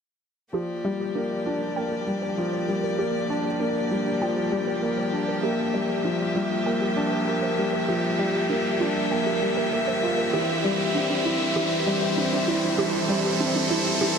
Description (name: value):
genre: piano and strings electronica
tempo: 98 BPM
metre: 4/4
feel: straight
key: G dorian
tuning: A4 = 440 Hz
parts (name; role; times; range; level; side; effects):
- warm string quartet; sustained chords; 0.5-14.2 s; E3 to E5; -27 LUFS; equal; shimmer reverb
- warbly dusty pluck; arpeggios; 0.5-14.1 s; D4 to G5; -32 LUFS; right 4 dB; none
- dark upright piano; riff; 0.5-14.2 s; E3 to F4; -25 LUFS; left 1 dB; analog delay, shimmer reverb
- riser; sound effects; 3.7-14.2 s; none; -31 LUFS; right 1 dB; none
room: wet huge ambient reverb, RT60 8.4 s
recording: dreamy mix soaked in reverb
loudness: -22 LUFS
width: side -6 dB against mid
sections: 0.5-14.2 A section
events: build-up 0.5-14.2; riser 3.7-14.2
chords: 0.5 Gm7; 10.3 C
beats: | 0.54 1.15 1.76 2.38 | 2.99 3.60 4.21 4.83 | 5.44 6.05 6.66 7.28 | 7.89 8.50 9.11 9.72 | 10.34 10.95 11.56 12.17 | 12.79 13.40 14.01